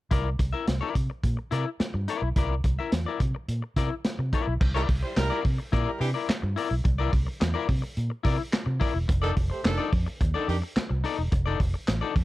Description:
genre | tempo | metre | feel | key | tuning
funk | 107 BPM | 4/4 | straight | C mixolydian | A4 = 440 Hz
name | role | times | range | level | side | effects
electric guitar at the edge of break-up | accompaniment | 0.1-12.2 s | Eb4 to E5 | -31 LUFS | left 7 dB | none
vintage muted fingered electric bass | bass | 0.1-12.2 s | E1 to C3 | -27 LUFS | equal | none
crunchy breakbeat drum kit | drums | 0.1-12.2 s | crash cymbal, handclaps, hi-hat, kick drum, snare drum | -27 LUFS | equal | none
warm horn section | second line | 4.7-10.6 s | Eb3 to C5 | -31 LUFS | right 2 dB | none
room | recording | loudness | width
little or no reverb | dark, warm production | -24 LUFS | side -17 dB against mid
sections
0.1-4.6 A section; 4.6-12.2 B section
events
none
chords
0.1 C9; 9.1 F13

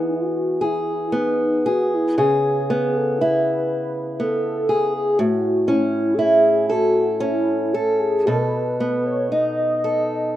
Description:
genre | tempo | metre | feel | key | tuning
celtic folk, Celtic slow air | 54-62 BPM | 3/4 | rubato | E major | A4 = 440 Hz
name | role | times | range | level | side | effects
warm velvety synth lead | melody | 0.0-10.4 s | D#4 to D#5 | -22 LUFS | equal | chorus
picked old ladder-braced acoustic guitar | accompaniment | 0.0-10.4 s | A2 to A4 | -20 LUFS | equal | none
room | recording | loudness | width
light reverb, studio ambience | rough home demo mix | -18 LUFS | side -13 dB against mid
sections
0.0-10.4 A section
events
none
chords
0.0 E; 2.2 C#m7; 5.2 A; 8.3 B7

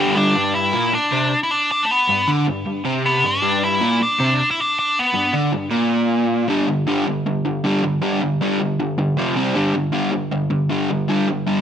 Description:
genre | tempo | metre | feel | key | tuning
rock | 156 BPM | 4/4 | straight | unclear | A4 = 440 Hz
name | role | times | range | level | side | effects
nasal lead guitar with a parked wah | melody | 0.0-5.3 s | A3 to G5 | -18 LUFS | left 1 dB | overdrive
overdriven semi-hollow guitar | riff | 0.0-11.6 s | F2 to C4 | -18 LUFS | equal | none
room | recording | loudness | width
moderate large studio reverb, RT60 1.2 s | none | -17 LUFS | side -9 dB against mid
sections
0.4-6.5 A section; 6.5-11.6 B section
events
none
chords
0.4 G5; 9.2 F5; 9.4 C5; 9.6 G5

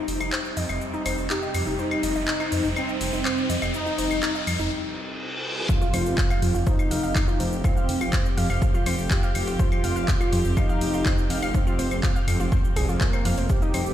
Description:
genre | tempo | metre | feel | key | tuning
melodic techno | 123 BPM | 4/4 | straight | unclear | A4 = 440 Hz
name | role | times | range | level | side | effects
analog synth brass | melody | 0.0-13.9 s | Bb3 to G4 | -29 LUFS | equal | chorus, sidechain pumping, dub echo
clear studio string section | sustained chords | 0.0-13.9 s | C3 to G4 | -33 LUFS | left 1 dB | sidechain pumping
riser, reverse cymbal and impact | sound effects | 0.0-7.6 s | none | -32 LUFS | equal | none
swelling detuned saw bass | bass | 0.1-13.9 s | F1 to F2 | -27 LUFS | equal | sidechain pumping
house drum kit | drums | 0.1-13.9 s | claves, handclaps, hi-hat, shaker | -30 LUFS | left 2 dB | high-pass filter on perc, high-pass filter on hats, high-pass filter on snare
warbly dusty pluck | arpeggios | 0.2-13.8 s | Eb4 to F6 | -32 LUFS | equal | chorus, sidechain pumping, digital delay
electronic kick drum | drums | 5.7-13.6 s | none | -23 LUFS | equal | none
room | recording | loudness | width
light reverb | played on a big sound system in a bare room, stone room reverb | -21 LUFS | side -11 dB against mid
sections
0.0-5.7 A section; 5.7-13.9 B section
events
build-up 0.0-5.7; riser 0.0-4.7; filter sweep on analog polysynth 0.0-5.7; break 4.7-5.7; reverse cymbal 4.7-5.7; drop 5.7-13.9; impact 5.7-7.6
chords
0.0 Cm/F; 5.7 F5

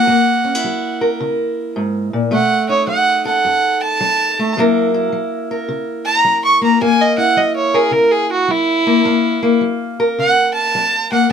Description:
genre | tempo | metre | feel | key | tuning
acoustic country blues, solo or duo | 107 BPM | 4/4 | swing 66% on 8ths | F# mixolydian | A4 = 440 Hz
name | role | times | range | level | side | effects
warm fiddle | melody | 0.0-11.3 s | E4 to C#6 | -14 LUFS | right 2 dB | none
fingerpicked steel-string acoustic guitar | accompaniment | 0.0-11.3 s | F#2 to A#4 | -17 LUFS | left 2 dB | none
room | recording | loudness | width
light reverb | close, detailed microphones | -13 LUFS | side -7 dB against mid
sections
0.0-11.3 A section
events
fiddle solo 0.0-11.3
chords
0.0 F#7; 2.3 B7; 4.6 F#7

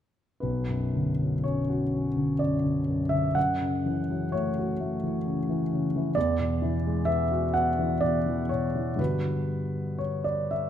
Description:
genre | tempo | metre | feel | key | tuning
classical, impressionist solo piano | 63 BPM | 3/4 | uneven beats, rubato | B minor | A4 = 440 Hz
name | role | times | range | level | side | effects
clear concert grand piano | solo | 0.4-10.7 s | B1 to F#5 | -25 LUFS | equal | none
room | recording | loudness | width
wet recital hall reverb, RT60 1.7 s | none | -25 LUFS | side -10 dB against mid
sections
0.4-10.7 A section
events
none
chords
0.4 Bmadd9; 3.4 F#m7; 6.2 E9; 9.0 Gmaj7

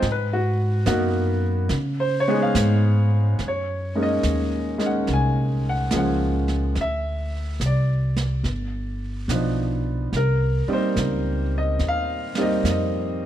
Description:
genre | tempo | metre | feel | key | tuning
jazz ballad | 71 BPM | 4/4 | swing 66% on 8ths | unclear | A4 = 440 Hz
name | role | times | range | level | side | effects
warm concert grand piano | accompaniment | 0.0-13.3 s | F3 to Ab5 | -23 LUFS | equal | none
upright bass | bass | 0.0-13.3 s | G1 to Db3 | -23 LUFS | equal | none
jazz brush drum kit | drums | 0.0-13.3 s | brushed snare drum, hi-hat, snare drum | -32 LUFS | right 4 dB | none
room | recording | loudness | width
little or no reverb | dark, warm production | -20 LUFS | side -11 dB against mid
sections
0.0-3.4 A section; 3.4-13.3 B section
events
none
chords
0.0 Abm7; 1.7 Db9; 3.4 Gb6; 6.8 Cadd9; 8.4 G7b13; 10.1 Cm7

